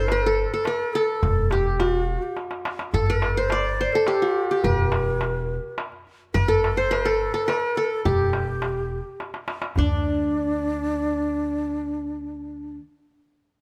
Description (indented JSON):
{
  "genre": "Arabic maqam ensemble",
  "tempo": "105 BPM",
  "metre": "3/4",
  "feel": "straight",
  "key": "G maqam rast",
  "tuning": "A4 = 440 Hz",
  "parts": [
    { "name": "qanun", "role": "melody", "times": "0.0-12.8 s", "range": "D4 to D5", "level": "-27 LUFS", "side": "equal", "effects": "none" },
    { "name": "breathy ney", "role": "second line", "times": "0.0-12.8 s", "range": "D4 to D5", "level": "-30 LUFS", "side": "equal", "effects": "slapback echo" },
    { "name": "upright bass", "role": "bass", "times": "0.0-12.8 s", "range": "E1 to D2", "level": "-30 LUFS", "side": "equal", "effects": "none" },
    { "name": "darbuka", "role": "percussion", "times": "0.1-10.0 s", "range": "none", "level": "-31 LUFS", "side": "equal", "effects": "none" }
  ],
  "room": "little or no reverb",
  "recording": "close, detailed microphones",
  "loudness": "-24 LUFS",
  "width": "mono",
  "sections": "0.0-9.8 A section; 9.8-13.2 B section",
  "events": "drum fill 2.4-2.9, 9.2-9.8",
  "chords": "none"
}